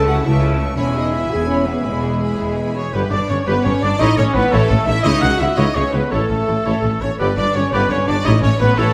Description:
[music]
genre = cinematic, heroic adventure film score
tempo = 113 BPM (dotted quarters)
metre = 6/8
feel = straight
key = unclear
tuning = A4 = 441 Hz
[part]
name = rich symphonic violin section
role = melody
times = 0.0-8.9 s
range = G#4 to G#5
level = -31 LUFS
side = equal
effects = none
[part]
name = hollow flute section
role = second line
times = 0.0-2.7 s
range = A5 to B5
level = -33 LUFS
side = equal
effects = none
[part]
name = rich symphonic violin section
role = second line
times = 0.0-8.9 s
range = A4 to C#6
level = -32 LUFS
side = equal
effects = none
[part]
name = warm oboe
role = second line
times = 0.0-8.9 s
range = A4 to F#5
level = -29 LUFS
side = equal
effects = none
[part]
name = clear symphonic viola section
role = accompaniment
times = 0.0-8.9 s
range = E3 to D5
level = -29 LUFS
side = equal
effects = none
[part]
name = warm French horn section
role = sustained chords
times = 0.0-8.9 s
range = G#3 to G#4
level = -23 LUFS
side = equal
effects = none
[part]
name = clear studio cello section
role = bass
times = 0.0-8.9 s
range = E2 to C#3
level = -24 LUFS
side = equal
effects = none
[part]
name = clear symphonic double bass section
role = bass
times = 0.0-8.8 s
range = E1 to C#2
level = -24 LUFS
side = equal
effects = none
[part]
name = warm trumpet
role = stabs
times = 2.8-8.9 s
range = A4 to F#5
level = -26 LUFS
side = equal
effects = none
[part]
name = warm tuba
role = bass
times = 2.9-8.8 s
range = G1 to C#2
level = -25 LUFS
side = equal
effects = none
[sound]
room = wet scoring stage reverb, RT60 1.7 s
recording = none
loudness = -17 LUFS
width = mono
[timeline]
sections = 0.0-2.9 A section; 2.9-8.9 B section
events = none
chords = 0.0 A/C#; 0.8 E; 2.9 G; 4.0 A; 5.0 C#madd9; 6.1 A; 7.2 G; 8.3 A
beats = 0.25 | 0.77 1.31 | 1.85 2.40 | 2.94 3.47 | 4.00 4.53 | 5.05 5.58 | 6.12 6.66 | 7.20 7.73 | 8.26 8.78

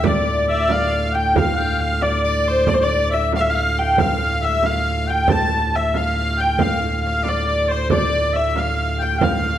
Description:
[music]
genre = medieval dance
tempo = 92 BPM (dotted quarters)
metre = 6/8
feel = straight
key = D minor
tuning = A4 = 441 Hz
[part]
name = rich hurdy-gurdy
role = melody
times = 0.0-9.6 s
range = C5 to A5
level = -20 LUFS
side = equal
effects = none
[part]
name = edgy shawm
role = second line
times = 0.0-9.6 s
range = C5 to A5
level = -25 LUFS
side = left 3 dB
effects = none
[part]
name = chamber organ, sparkling flutes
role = drone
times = 0.0-9.6 s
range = D2 to A2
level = -23 LUFS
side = equal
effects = none
[part]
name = frame drum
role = percussion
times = 0.0-9.4 s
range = none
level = -23 LUFS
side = right 4 dB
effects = none
[sound]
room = wet recital hall reverb, RT60 1.3 s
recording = dark, warm production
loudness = -16 LUFS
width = side -11 dB against mid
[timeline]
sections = 0.0-1.4 A section; 1.4-9.6 B section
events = none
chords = none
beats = | 0.05 0.70 | 1.36 2.01 | 2.67 3.32 | 3.98 4.63 | 5.29 5.94 | 6.59 7.25 | 7.90 8.55 | 9.21

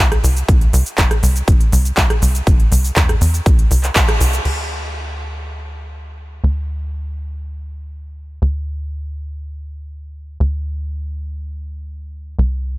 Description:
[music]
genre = progressive house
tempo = 121 BPM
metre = 4/4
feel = straight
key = unclear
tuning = A4 = 440 Hz
[part]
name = tight sequencer bass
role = bass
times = 0.0-12.8 s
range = G1 to E2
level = -19 LUFS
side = equal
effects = sidechain pumping
[part]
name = big-room dance drum kit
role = drums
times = 0.1-4.6 s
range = crash cymbal, handclaps, hi-hat, rim click, shaker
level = -20 LUFS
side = equal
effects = none
[part]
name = electronic kick drum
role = drums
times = 0.5-4.1 s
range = none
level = -14 LUFS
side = equal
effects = none
[sound]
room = little or no reverb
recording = none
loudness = -14 LUFS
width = side -19 dB against mid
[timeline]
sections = 0.0-4.5 A section; 4.5-12.8 B section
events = band accent 4.0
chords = none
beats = | 0.49 0.98 1.48 1.97 | 2.47 2.96 3.46 3.96 | 4.45 4.95 5.44 5.94 | 6.44 6.93 7.43 7.92 | 8.42 8.91 9.41 9.91 | 10.40 10.90 11.39 11.89 | 12.39

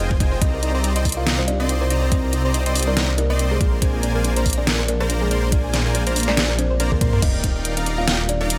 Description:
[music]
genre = future bass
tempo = 141 BPM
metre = 4/4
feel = swing 56% on 16ths, half-time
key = unclear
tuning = A4 = 439 Hz
[part]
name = soft round pluck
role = arpeggios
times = 0.0-7.2 s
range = D4 to Eb5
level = -33 LUFS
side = equal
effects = chorus, sidechain pumping, delay
[part]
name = dense compressed supersaw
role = riff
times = 0.0-8.6 s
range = Bb3 to C6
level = -28 LUFS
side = equal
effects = sidechain pumping
[part]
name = detuned saw bass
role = bass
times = 0.0-8.6 s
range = Eb1 to C2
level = -24 LUFS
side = equal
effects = chorus, sidechain pumping
[part]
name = buzzing kalimba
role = melody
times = 0.1-8.5 s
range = Ab3 to C6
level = -30 LUFS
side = equal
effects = sidechain pumping, digital delay
[part]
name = electronic kick drum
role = drums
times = 0.1-7.5 s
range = none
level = -23 LUFS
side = equal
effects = overdrive
[part]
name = pop drum kit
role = drums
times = 0.2-8.6 s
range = crash cymbal, hi-hat, snare drum, toms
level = -25 LUFS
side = equal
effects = overdrive
[sound]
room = digital ambience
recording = none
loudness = -20 LUFS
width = mono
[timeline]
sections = 0.0-7.2 A section; 7.2-8.6 A section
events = drop 0.0-7.2, 7.2-8.6; drum fill 6.9-7.2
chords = 0.4 Cm7; 3.6 Bb9; 7.2 Ebmaj7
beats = | 0.41 0.84 1.27 1.69 | 2.12 2.54 2.97 3.39 | 3.82 4.25 4.67 5.10 | 5.52 5.95 6.37 6.80 | 7.22 7.65 8.07 8.50

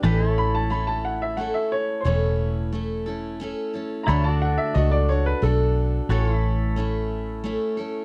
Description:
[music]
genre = honky-tonk and classic country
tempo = 89 BPM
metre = 3/4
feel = straight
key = A major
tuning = A4 = 440 Hz
[part]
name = picked steel-string acoustic guitar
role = accompaniment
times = 0.0-8.0 s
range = A2 to A4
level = -30 LUFS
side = equal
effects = none
[part]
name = pedal steel guitar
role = sustained chords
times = 0.0-8.0 s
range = E4 to D5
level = -35 LUFS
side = equal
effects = none
[part]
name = vintage muted fingered electric bass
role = bass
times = 0.0-7.6 s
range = E1 to D2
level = -26 LUFS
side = equal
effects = none
[part]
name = bright upright piano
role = second line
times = 0.4-6.1 s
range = A4 to B5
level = -28 LUFS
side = equal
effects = none
[sound]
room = little or no reverb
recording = dark, warm production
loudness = -24 LUFS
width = mono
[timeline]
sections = 0.0-8.0 A section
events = upright piano solo 0.0-8.0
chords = 0.0 A; 4.1 D; 6.1 A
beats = | 0.04 0.71 1.39 | 2.06 2.73 3.40 | 4.08 4.75 5.42 | 6.09 6.76 7.44

